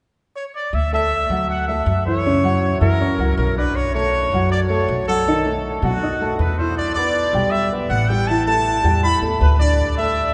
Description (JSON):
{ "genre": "latin", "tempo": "159 BPM", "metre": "4/4", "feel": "straight", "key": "D major", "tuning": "A4 = 440 Hz", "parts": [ { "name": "bright trumpet section", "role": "melody", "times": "0.4-10.3 s", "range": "F#4 to B5", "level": "-23 LUFS", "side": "equal", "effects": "none" }, { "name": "upright bass", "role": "bass", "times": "0.7-10.3 s", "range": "A1 to B2", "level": "-23 LUFS", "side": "equal", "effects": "none" }, { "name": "warm baby grand piano", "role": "accompaniment", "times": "0.9-10.3 s", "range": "C#3 to E6", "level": "-25 LUFS", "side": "equal", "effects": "none" } ], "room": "wet cathedral reverb, RT60 5.9 s", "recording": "recorded in a church or concert hall, nothing above 10.7 kHz", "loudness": "-19 LUFS", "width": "mono", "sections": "0.7-10.3 A section", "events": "none", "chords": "0.0 N.C.; 0.7 Dadd9; 2.2 F#7; 3.8 Bm9; 5.3 B7; 6.8 Em7; 8.3 A5; 9.8 Dsus2" }